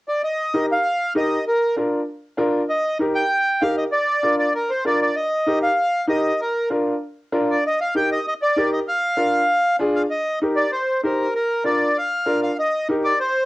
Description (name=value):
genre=latin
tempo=194 BPM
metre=4/4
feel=straight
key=Eb major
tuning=A4 = 441 Hz
part: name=accordion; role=melody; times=0.1-13.5 s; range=Bb4 to G5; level=-20 LUFS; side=equal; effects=none
part: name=clear upright piano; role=accompaniment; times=0.5-13.1 s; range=D4 to C5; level=-21 LUFS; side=equal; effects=cassette tape
room=moderate studio reverb, RT60 0.6 s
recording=home recording on cassette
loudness=-18 LUFS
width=side -19 dB against mid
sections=0.2-13.5 A section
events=none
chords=0.2 Eb; 1.5 Bb; 2.7 Eb; 3.9 Bb; 5.2 Eb; 6.4 Bb; 7.6 Eb; 8.9 Bb7; 10.1 Eb; 11.3 Bb; 12.6 Eb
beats=| 0.22 0.53 0.84 1.15 | 1.46 1.76 2.07 2.38 | 2.69 3.00 3.31 3.62 | 3.92 4.23 4.54 4.85 | 5.16 5.47 5.78 6.09 | 6.39 6.70 7.01 7.32 | 7.63 7.94 8.25 8.56 | 8.87 9.18 9.49 9.80 | 10.11 10.42 10.72 11.04 | 11.34 11.65 11.96 12.27 | 12.58 12.89 13.20